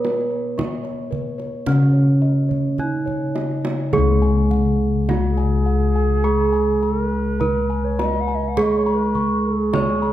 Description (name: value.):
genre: Javanese gamelan.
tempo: 52-57 BPM.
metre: 4/4.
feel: straight.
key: Db slendro.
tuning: A4 = 440 Hz.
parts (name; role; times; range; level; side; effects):
gamelan-type bronze metallophone; melody; 0.0-10.1 s; Cb4-45c to Db5; -24 LUFS; right 2 dB; none.
gamelan-type bronze metallophone; accompaniment; 0.0-10.1 s; Db3 to Cb4-45c; -24 LUFS; right 2 dB; none.
gamelan-type bossed gongs; arpeggios; 0.0-10.1 s; Cb5-45c to Db6; -28 LUFS; left 4 dB; none.
gamelan-type bossed gongs; bass; 0.0-10.1 s; Db2 to Cb5-45c; -21 LUFS; left 2 dB; none.
kendang; percussion; 0.0-10.1 s; none; -28 LUFS; right 4 dB; none.
bright reedy low xiao; second line; 5.3-10.1 s; Ab4+25c to Gb5-31c; -26 LUFS; right 6 dB; none.
room: wet recital hall reverb, RT60 1.5 s.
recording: dark, warm production.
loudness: -17 LUFS.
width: side -12 dB against mid.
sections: 0.0-3.9 A section; 3.9-10.1 B section.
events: drum fill 2.5-3.9.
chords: none.